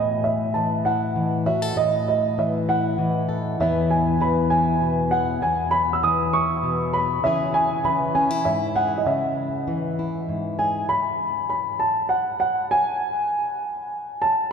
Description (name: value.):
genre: folk.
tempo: 66 BPM (dotted quarters).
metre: 6/8.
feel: straight.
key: unclear.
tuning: A4 = 440 Hz.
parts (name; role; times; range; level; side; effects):
dark upright piano; melody; 0.0-14.5 s; D#5 to E6; -22 LUFS; right 1 dB; none.
fingerpicked plugged-in steel-string acoustic guitar; accompaniment; 0.0-10.9 s; E2 to A4; -24 LUFS; left 2 dB; none.
room: wet cathedral reverb, RT60 4.9 s.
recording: recorded in a church or concert hall.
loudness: -20 LUFS.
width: side -6 dB against mid.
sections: 0.0-10.9 A section; 10.9-14.5 B section.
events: none.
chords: 0.0 A5; 3.6 E; 7.2 C#m; 10.9 N.C..